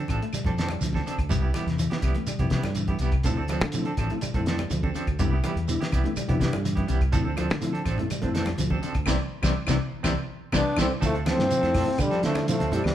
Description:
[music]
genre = afrobeat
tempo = 123 BPM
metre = 4/4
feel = straight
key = D dorian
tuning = A4 = 440 Hz
[part]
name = semi-hollow electric guitar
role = arpeggios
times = 0.0-12.8 s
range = C3 to A3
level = -32 LUFS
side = left 3 dB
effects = none
[part]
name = semi-hollow electric guitar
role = stabs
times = 0.0-12.9 s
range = F3 to A4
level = -34 LUFS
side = right 4 dB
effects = tremolo
[part]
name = fingered electric bass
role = bass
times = 0.0-12.9 s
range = A1 to D3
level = -28 LUFS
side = equal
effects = none
[part]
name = cloth-damped thuddy drum kit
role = drums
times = 0.1-12.9 s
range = hi-hat, kick drum, snare drum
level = -30 LUFS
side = equal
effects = none
[part]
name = claves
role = percussion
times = 0.1-12.9 s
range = none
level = -42 LUFS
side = left 4 dB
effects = none
[part]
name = congas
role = percussion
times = 0.1-12.8 s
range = none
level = -34 LUFS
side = right 1 dB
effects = none
[part]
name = shekere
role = percussion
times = 0.1-12.9 s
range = none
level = -35 LUFS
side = right 3 dB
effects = none
[part]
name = mellow tonewheel organ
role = accompaniment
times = 3.2-12.8 s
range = F3 to E4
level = -33 LUFS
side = equal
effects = slow rotary speaker
[part]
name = breathy trombone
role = melody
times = 10.6-12.9 s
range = G3 to D4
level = -26 LUFS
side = left 1 dB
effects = none
[part]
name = growling tenor saxophone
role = second line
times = 10.6-12.9 s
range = C3 to B3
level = -34 LUFS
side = right 2 dB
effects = none
[sound]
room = moderate large studio reverb, RT60 1.2 s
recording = band playing live in one room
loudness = -23 LUFS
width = side -11 dB against mid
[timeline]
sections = 0.0-11.0 A section; 11.0-12.9 B section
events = band accent 9.1-11.0; tonewheel organ fill 10.1-11.0; drum fill 10.8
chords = 0.0 Dm7; 1.3 Cmaj7; 3.2 Dm7; 5.2 Cmaj7; 7.1 Dm7; 9.1 Cmaj7; 11.0 Dm7

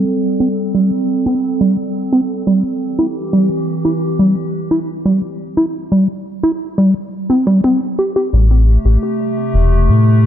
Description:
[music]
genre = IDM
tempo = 87 BPM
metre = 4/4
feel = straight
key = A minor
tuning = A4 = 438 Hz
[part]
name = warbly tape-like pad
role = sustained chords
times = 0.0-10.3 s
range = C3 to A4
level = -18 LUFS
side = equal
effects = chorus, built-in reverb
[part]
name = deep acid bass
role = arpeggios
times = 0.0-8.3 s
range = G3 to G4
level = -15 LUFS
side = right 1 dB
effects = ping-pong delay
[part]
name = round analog bass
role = bass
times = 8.3-10.3 s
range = E1 to A2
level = -10 LUFS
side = equal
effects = tube saturation
[sound]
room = light reverb, digital ambience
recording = low-pass filter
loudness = -13 LUFS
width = side -10 dB against mid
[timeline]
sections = 0.0-8.3 A section; 8.3-10.3 B section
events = filter sweep on ambient pad 0.0-8.3; filter sweep on acid bass 0.0-8.3; filter sweep 0.0-8.3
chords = 0.0 Am7; 2.8 C; 8.3 Am7

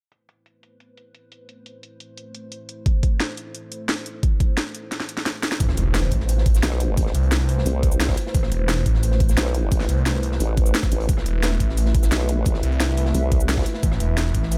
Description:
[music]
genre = dark technical drum and bass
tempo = 175 BPM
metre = 4/4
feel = straight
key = A minor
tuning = A4 = 440 Hz
[part]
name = dark analog pad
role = sustained chords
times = 0.1-14.6 s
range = A3 to E5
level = -34 LUFS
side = equal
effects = chorus, sidechain pumping
[part]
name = drum and bass drum kit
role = drums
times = 0.1-14.6 s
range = hi-hat, rim click, shaker, snare drum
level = -28 LUFS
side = equal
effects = overdrive, low-pass filter on hats, low-pass filter on snare, low-pass filter on perc, low-pass filter on room
[part]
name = electronic kick drum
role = drums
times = 2.9-14.4 s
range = none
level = -23 LUFS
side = equal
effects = overdrive
[part]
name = phased detuned saw bass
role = bass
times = 5.6-14.6 s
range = E1 to C2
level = -23 LUFS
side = equal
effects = phaser, tube saturation, sidechain pumping
[part]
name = crunchy breakbeat drum kit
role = drums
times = 5.6-14.6 s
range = hi-hat, snare drum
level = -38 LUFS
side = equal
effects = high-pass filter on hats, high-pass filter on snare, high-pass filter on room
[part]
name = impact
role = sound effects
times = 5.6-7.0 s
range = none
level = -31 LUFS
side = equal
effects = none
[part]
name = formant-sweep wobble bass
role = bass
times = 6.6-13.6 s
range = A1 to C2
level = -24 LUFS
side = equal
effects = chorus
[sound]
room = little or no reverb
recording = none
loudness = -21 LUFS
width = mono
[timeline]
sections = 0.1-5.6 A section; 5.6-14.6 B section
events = filter sweep on drum 0.1-5.6; drum fill 4.9-5.6; drop 5.6-14.6; impact 5.6-7.0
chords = 0.1 Amadd9

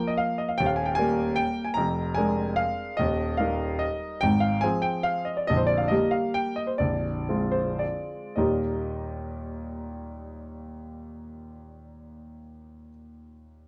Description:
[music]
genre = classical, piano waltz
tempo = 100-161 BPM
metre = 3/4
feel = rubato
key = Eb major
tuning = A4 = 441 Hz
[part]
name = clear grand piano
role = solo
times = 0.0-13.7 s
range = Bb0 to Bb5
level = -28 LUFS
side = equal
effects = none
[sound]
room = light reverb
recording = dark, warm production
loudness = -26 LUFS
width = mono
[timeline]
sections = 0.0-8.4 A section; 8.4-11.7 B section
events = slowing down 4.9-8.4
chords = 0.0 Bb5; 0.6 Eb; 1.8 Bb7/F; 3.0 Eb; 4.2 Fm/Ab; 5.5 Bb69; 6.8 Bb9; 8.4 Eb

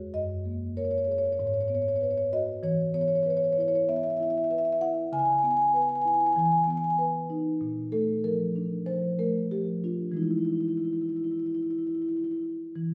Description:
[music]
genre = classical, contemporary piece for solo marimba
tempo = 96 BPM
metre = 4/4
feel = rubato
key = E lydian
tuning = A4 = 440 Hz
[part]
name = marimba with soft mallets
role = solo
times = 0.0-12.9 s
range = E2 to G#5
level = -27 LUFS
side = equal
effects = none
[sound]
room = wet stone room reverb, RT60 1.2 s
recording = heard from further back in the room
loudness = -27 LUFS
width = mono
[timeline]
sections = 0.0-12.8 A section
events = none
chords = 0.1 F#add9; 1.4 G#m7; 2.6 E5; 5.1 C#m7; 6.4 Emaj7; 7.6 A#maj7; 10.2 Emaj7

